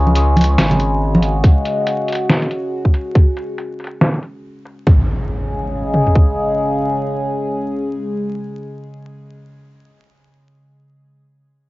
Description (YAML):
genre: deep dubstep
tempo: 140 BPM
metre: 4/4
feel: swing 59% on 16ths, half-time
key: unclear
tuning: A4 = 440 Hz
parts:
  - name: overtone-sweeping drone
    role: sustained chords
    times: 0.0-9.1 s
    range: C#3 to G#4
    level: -20 LUFS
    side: left 1 dB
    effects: chorus, built-in reverb, cassette tape
  - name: saturated sub bass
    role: bass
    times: 0.0-1.4 s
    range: G#1 to C#2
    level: -15 LUFS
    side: equal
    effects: transformer saturation
  - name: congas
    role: percussion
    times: 0.1-1.2 s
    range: none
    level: -16 LUFS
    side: equal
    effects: none
  - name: trip hop sampler-style drum kit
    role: drums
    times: 0.2-4.8 s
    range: hi-hat, snare drum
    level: -17 LUFS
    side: equal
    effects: low-pass filter on hats, cassette tape, low-pass filter on snare
  - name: garage drum kit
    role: drums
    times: 1.4-6.3 s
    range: kick drum, toms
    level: -11 LUFS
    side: equal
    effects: cassette tape
  - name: impact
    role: sound effects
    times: 4.9-9.2 s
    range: none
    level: -24 LUFS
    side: equal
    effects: none
room: moderate small room reverb, RT60 0.5 s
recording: home recording on cassette, vinyl crackle, nothing above 7.5 kHz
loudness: -14 LUFS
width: side -19 dB against mid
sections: 0.0-4.9 A section; 4.9-8.3 B section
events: filter sweep on drum 0.0-4.9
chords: 0.0 C#5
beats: 0.15 0.58 1.01 | 1.44 1.87 2.30 2.72 | 3.15 3.58 4.01 4.44 | 4.87 5.30 5.72 6.15 | 6.58 7.01 7.44 7.87